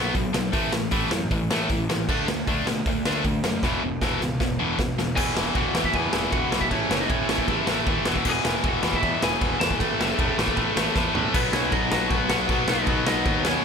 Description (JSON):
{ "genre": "punk rock", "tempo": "156 BPM", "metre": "4/4", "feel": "straight", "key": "unclear", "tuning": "A4 = 440 Hz", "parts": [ { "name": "tight distorted guitar", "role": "riff", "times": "0.0-13.6 s", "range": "E2 to D4", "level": "-24 LUFS", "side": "left 1 dB", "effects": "distortion" }, { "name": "fuzz picked electric bass", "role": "bass", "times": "0.0-13.6 s", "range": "E1 to B2", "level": "-31 LUFS", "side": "equal", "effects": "overdrive" }, { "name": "raw garage drum kit", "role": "drums", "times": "0.1-13.5 s", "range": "crash cymbal, hi-hat, kick drum, ride cymbal, snare drum, toms", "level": "-26 LUFS", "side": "equal", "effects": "none" }, { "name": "lightly driven lead guitar", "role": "melody", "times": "5.2-13.6 s", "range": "B3 to A5", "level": "-28 LUFS", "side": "equal", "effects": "none" } ], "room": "little or no reverb", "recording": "none", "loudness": "-21 LUFS", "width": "side -6 dB against mid", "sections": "0.0-5.2 A section; 5.2-11.3 B section; 11.3-13.6 C section", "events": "drum fill 3.6-5.2, 11.0-11.3", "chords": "0.0 B5; 0.5 A5; 2.1 D5; 3.6 E5; 5.2 E; 6.7 A; 8.1 E; 9.8 A5; 11.3 B" }